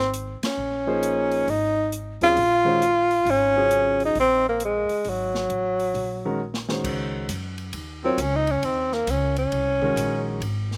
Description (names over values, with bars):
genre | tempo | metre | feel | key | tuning
modal jazz | 134 BPM | 4/4 | swing 65% on 8ths | Ab mixolydian | A4 = 440 Hz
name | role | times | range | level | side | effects
breathy tenor saxophone | melody | 0.0-10.4 s | Gb3 to F4 | -24 LUFS | equal | slapback echo
upright bass | bass | 0.0-10.8 s | Ab1 to Gb2 | -34 LUFS | equal | none
swinging big-band drum kit | drums | 0.1-10.8 s | crash cymbal, hi-hat, kick drum, ride cymbal, snare drum | -37 LUFS | equal | none
warm concert grand piano | accompaniment | 0.9-10.4 s | Db3 to Db5 | -30 LUFS | equal | none
room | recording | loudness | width
little or no reverb | recorded outdoors, with no room sound | -23 LUFS | mono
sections
0.0-6.8 A section; 6.8-10.8 B section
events
band accent 0.4; drum fill 6.4-6.8; tenor saxophone solo 6.8-10.8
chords
0.0 Ebm/Ab; 6.8 Ab7sus4